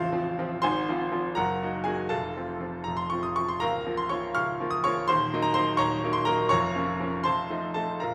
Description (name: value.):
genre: classical, virtuoso piano study.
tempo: 81 BPM (dotted quarters).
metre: 6/8.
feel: uneven beats, rubato.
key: unclear.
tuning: A4 = 440 Hz.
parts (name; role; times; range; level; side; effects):
clear concert grand piano; solo; 0.0-8.1 s; A0 to F6; -28 LUFS; equal; none.
room: moderate recital hall reverb, RT60 1.4 s.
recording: none.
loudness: -27 LUFS.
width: mono.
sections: 0.0-8.1 A section.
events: none.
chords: 0.0 F/A; 0.6 Fm/Ab; 1.4 Ebm/Gb; 2.1 F; 3.6 Bbm/Db; 5.1 Ebm7; 6.5 Bbm/F; 7.2 F7.